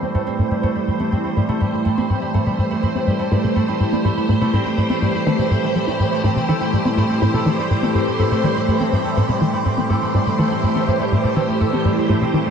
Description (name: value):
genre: ambient, sequencer-driven space music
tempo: 123 BPM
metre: 4/4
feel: straight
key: A minor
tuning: A4 = 441 Hz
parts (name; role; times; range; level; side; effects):
- phased string machine; sustained chords; 0.0-12.5 s; A2 to C5; -21 LUFS; equal; ensemble chorus, phaser
- concert harp; arpeggios; 0.0-12.5 s; G3 to A4; -23 LUFS; right 1 dB; auto-pan, tape echo
- tight sequencer bass; riff; 0.0-12.4 s; A2 to E4; -20 LUFS; equal; wide subtle chorus, tape echo
- pulsing gated texture; texture; 0.0-12.5 s; B5; -30 LUFS; right 6 dB; chorus, built-in reverb
room: wet spring reverb, RT60 3.0 s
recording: echo-heavy mix, cassette tape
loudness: -16 LUFS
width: side -7 dB against mid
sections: 0.0-12.5 A section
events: filter sweep on analog synth bass 0.0-12.5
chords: 0.0 Am7